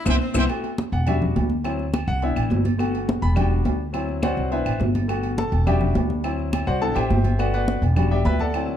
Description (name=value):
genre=latin, salsa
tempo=209 BPM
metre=4/4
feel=straight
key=unclear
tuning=A4 = 440 Hz
part: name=edgy saxophone section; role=second line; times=0.0-0.5 s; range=C4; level=-34 LUFS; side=left 1 dB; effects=none
part: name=clear concert grand piano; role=accompaniment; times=0.1-8.8 s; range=F#3 to B5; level=-26 LUFS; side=left 3 dB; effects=none
part: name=upright bass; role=bass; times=0.1-8.8 s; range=E1 to D2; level=-22 LUFS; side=equal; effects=none
part: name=claves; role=percussion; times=0.1-8.7 s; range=none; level=-39 LUFS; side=left 1 dB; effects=none
part: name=congas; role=percussion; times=0.1-8.8 s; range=none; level=-27 LUFS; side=equal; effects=none
part: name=timbales and agogo bells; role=percussion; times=0.1-8.7 s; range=none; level=-31 LUFS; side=right 6 dB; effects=none
room=light reverb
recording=dark, warm production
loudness=-20 LUFS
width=side -10 dB against mid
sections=0.5-8.8 A section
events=drum fill 0.0-0.5; band accent 0.0-0.5; grand piano solo 0.5-8.8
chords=0.5 Esus24; 1.1 Em7; 1.6 D7; 2.2 Cmaj7; 2.8 Gmaj7; 3.4 Em7; 3.9 D7; 4.5 Cmaj7; 5.1 Gmaj7; 5.7 Em7; 6.2 D7; 6.8 Cmaj7; 7.4 Em7